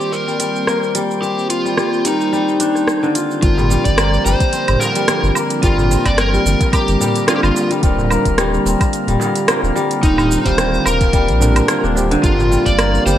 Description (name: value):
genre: organic downtempo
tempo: 109 BPM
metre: 4/4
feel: swing 55% on 16ths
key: G minor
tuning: A4 = 440 Hz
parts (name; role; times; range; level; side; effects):
- overdriven slide guitar; melody; 0.0-13.2 s; Eb4 to D5; -19 LUFS; equal; digital delay
- overdriven tine electric piano; accompaniment; 0.0-13.2 s; D3 to C5; -23 LUFS; right 2 dB; sidechain pumping, digital delay
- warm analog pad; sustained chords; 0.0-13.2 s; F3 to G4; -25 LUFS; equal; chorus, sidechain pumping
- kora; arpeggios; 0.0-13.2 s; D3 to G4; -21 LUFS; left 2 dB; digital delay
- organic electronic drum kit; drums; 0.0-13.2 s; hi-hat, rim click, shaker, woodblock; -20 LUFS; right 1 dB; gated reverb
- drifting glass-harmonics texture; texture; 0.0-13.2 s; Bb3 to C5; -29 LUFS; equal; chorus, built-in reverb
- warm sub bass; bass; 3.4-13.2 s; Eb1 to Bb1; -18 LUFS; equal; sidechain pumping
- electronic kick drum; drums; 3.4-12.8 s; none; -16 LUFS; equal; none
- darbuka; percussion; 3.6-12.5 s; none; -25 LUFS; right 1 dB; none
room: moderate lush hall reverb, RT60 2.4 s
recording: bright 1980s-style digital production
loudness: -13 LUFS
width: side -11 dB against mid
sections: 0.0-3.4 A section; 3.4-13.2 B section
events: none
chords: 0.0 Cm7; 3.4 Gm7; 7.8 Ebmaj7; 12.2 Gm7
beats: 0.12 0.67 | 1.23 1.77 2.33 2.88 | 3.43 3.98 4.53 5.08 | 5.63 6.18 6.73 7.28 | 7.83 8.38 8.93 9.48 | 10.03 10.58 11.13 11.68 | 12.23 12.78